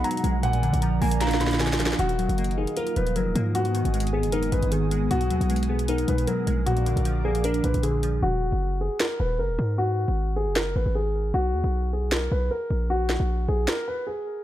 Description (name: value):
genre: hip hop, trap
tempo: 154 BPM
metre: 4/4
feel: half-time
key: Eb harmonic minor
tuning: A4 = 440 Hz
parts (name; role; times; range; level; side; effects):
- dark grand piano; melody; 0.0-14.4 s; Gb4 to Cb6; -28 LUFS; left 1 dB; low-pass filter, ping-pong delay
- hollow clarinet-like synth lead; second line; 0.0-1.6 s; F5 to Bb5; -36 LUFS; equal; chorus, phaser, ping-pong delay
- glassy digital keys; accompaniment; 0.0-8.2 s; Ab2 to F4; -27 LUFS; right 1 dB; chorus
- warm analog pad; sustained chords; 0.0-8.2 s; Bb3 to Eb6; -35 LUFS; left 3 dB; chorus
- hard-hitting 808-style bass; bass; 0.0-13.7 s; Eb1 to Ab2; -25 LUFS; equal; none
- trap drum kit; drums; 0.0-13.8 s; hi-hat, snare drum; -30 LUFS; equal; none
room: light reverb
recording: dark, warm production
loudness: -22 LUFS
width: side -13 dB against mid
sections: 0.0-2.0 A section; 2.0-8.2 B section; 8.2-14.4 C section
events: drum fill 1.2-2.0; hi-hats muted 8.2-14.4; filter sweep on grand piano 8.2-14.4; break 13.7-14.4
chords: 0.4 Bb; 2.0 Ebmadd9; 3.5 Abm; 5.1 B6; 6.7 Bb; 8.2 Ebm; 9.8 Gbsus2; 11.3 B5; 12.9 Ab7sus2/Bb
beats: 0.04 | 0.43 0.82 1.21 1.60 | 1.99 2.38 2.77 3.16 | 3.55 3.94 4.33 4.72 | 5.11 5.50 5.89 6.28 | 6.67 7.05 7.45 7.83 | 8.22 8.61 9.00 9.39 | 9.78 10.17 10.56 10.95 | 11.34 11.73 12.12 12.51 | 12.90 13.29 13.68 14.07